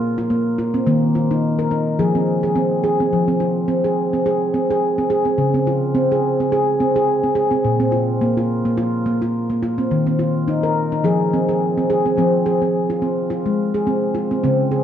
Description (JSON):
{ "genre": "world meditative, meditative tuned percussion", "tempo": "106 BPM", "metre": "4/4", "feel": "swing 56% on 16ths", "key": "F minor", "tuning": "A4 = 441 Hz", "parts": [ { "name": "handpan", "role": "solo", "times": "0.0-14.8 s", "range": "Bb2 to Bb4", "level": "-16 LUFS", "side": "equal", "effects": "none" } ], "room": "wet spring reverb, RT60 2.7 s", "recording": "none", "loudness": "-16 LUFS", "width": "side -9 dB against mid", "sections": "0.0-3.1 A section; 3.1-12.2 B section; 12.2-14.8 B section", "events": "none", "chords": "0.0 Bb5; 0.9 Eb5; 2.0 Fm; 5.4 Db; 7.6 Bb5; 9.9 Eb5; 11.0 Fm" }